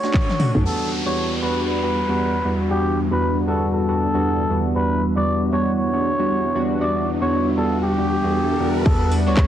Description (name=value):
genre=deep house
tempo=117 BPM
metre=4/4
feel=swing 59% on 16ths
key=E dorian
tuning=A4 = 440 Hz
part: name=trumpet with cup mute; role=melody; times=0.0-9.5 s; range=G4 to D5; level=-24 LUFS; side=equal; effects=vintage 12-bit sampler grit
part: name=chorused polysynth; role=stabs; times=0.0-9.5 s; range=E2 to F#4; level=-21 LUFS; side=equal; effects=sidechain pumping, analog delay
part: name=crisp fusion drum kit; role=drums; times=0.0-0.5, 8.9-9.5 s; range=hi-hat, snare drum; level=-38 LUFS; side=right 2 dB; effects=none
part: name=electronic kick drum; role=drums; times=0.1-0.3, 8.9-9.5 s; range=none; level=-17 LUFS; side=equal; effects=vintage 12-bit sampler grit
part: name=house drum kit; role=drums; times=0.1-0.6, 8.9-9.5 s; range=crash cymbal, handclaps, hi-hat, toms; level=-24 LUFS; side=left 1 dB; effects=vintage 12-bit sampler grit
part: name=hollow knocking FM bass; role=bass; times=0.6, 8.9-9.5 s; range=B1 to E2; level=-20 LUFS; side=equal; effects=sidechain pumping
part: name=dark analog pad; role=sustained chords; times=3.1-9.5 s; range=G3 to E5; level=-28 LUFS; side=right 1 dB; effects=none
part: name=downlifter and riser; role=sound effects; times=0.7-8.9 s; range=none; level=-32 LUFS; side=right 1 dB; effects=none
part: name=ethereal airy pad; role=texture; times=1.8-9.5 s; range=G3 to E5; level=-28 LUFS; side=left 1 dB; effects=ensemble chorus, built-in reverb, tremolo, sidechain pumping
room=moderate echo chamber reverb, RT60 2.1 s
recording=heavily compressed radio sound, cassette tape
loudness=-18 LUFS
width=side -10 dB against mid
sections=0.7-8.9 A section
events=drum fill 0.1-0.7; band accent 0.1; filter sweep on analog synth pad 0.7-8.9; riser 6.5-8.9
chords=0.0 Bm7; 0.7 Em7